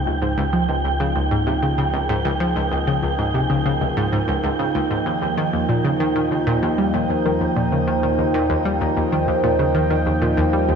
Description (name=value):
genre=ambient, sequencer-driven space music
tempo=96 BPM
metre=4/4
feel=straight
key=unclear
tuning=A4 = 442 Hz
part: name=sweeping resonant pad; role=sustained chords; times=0.0-10.8 s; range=F3 to G5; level=-22 LUFS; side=right 1 dB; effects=chorus, phaser, shimmer reverb
part: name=warm sub bass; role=bass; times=0.0-10.8 s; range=Db2 to Eb2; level=-28 LUFS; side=equal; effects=none
part: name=wind-like tuned noise texture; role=texture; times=0.0-10.8 s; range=G5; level=-26 LUFS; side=right 4 dB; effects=built-in reverb, shimmer reverb
part: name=analog pluck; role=riff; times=0.1-10.8 s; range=Db2 to G3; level=-21 LUFS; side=left 1 dB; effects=chorus, cassette tape, ping-pong delay, shimmer reverb
room=wet scoring stage reverb, RT60 1.9 s, digital ambience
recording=none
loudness=-18 LUFS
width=side -6 dB against mid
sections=0.0-10.8 A section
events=fade-in on analog synth pad 0.0-10.8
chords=0.0 Db; 5.1 Ebadd9